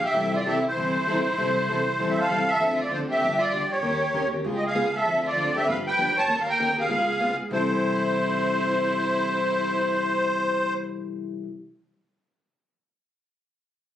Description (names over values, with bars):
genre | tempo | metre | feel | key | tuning
acoustic string swing (jazz manouche) | 196 BPM | 4/4 | swing 60% on 8ths | C major | A4 = 438 Hz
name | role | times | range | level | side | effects
musette accordion | melody | 0.0-10.7 s | C5 to A5 | -24 LUFS | equal | none
rich violin | second line | 0.0-10.7 s | E4 to Db5 | -31 LUFS | right 2 dB | none
upright bass | bass | 0.0-11.4 s | G1 to Eb2 | -37 LUFS | right 1 dB | none
picked plugged-in steel-string acoustic guitar | accompaniment | 0.1-11.5 s | C3 to Bb4 | -29 LUFS | left 2 dB | none
room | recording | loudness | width
moderate studio reverb, RT60 0.9 s | recorded on a phone in the room, club reverb, compression | -22 LUFS | side -11 dB against mid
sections
0.0-2.6 A section; 2.6-7.5 B section; 7.5-10.0 C section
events
none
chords
0.2 C6; 2.6 Dm7; 3.2 G7; 3.8 Eb7; 4.4 Db7; 5.1 Dm7; 5.7 G7; 6.3 Eb7; 6.9 Db7; 7.5 C6